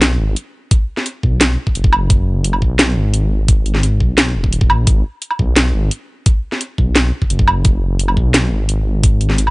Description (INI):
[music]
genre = half-time drum and bass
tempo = 173 BPM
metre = 4/4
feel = half-time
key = G# minor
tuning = A4 = 439 Hz
[part]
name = dark detuned saw bass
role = bass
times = 0.0-9.5 s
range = D#1 to B1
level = -16 LUFS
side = equal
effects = none
[part]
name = drum and bass drum kit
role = drums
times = 0.0-9.5 s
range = hi-hat, snare drum, woodblock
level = -15 LUFS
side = equal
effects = none
[part]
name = electronic kick drum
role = drums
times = 0.7-9.1 s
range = none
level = -14 LUFS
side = equal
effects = none
[sound]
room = little or no reverb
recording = dry, gritty hardware recording, nothing above 10.3 kHz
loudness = -13 LUFS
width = side -24 dB against mid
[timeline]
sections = 0.0-9.5 A section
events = none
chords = none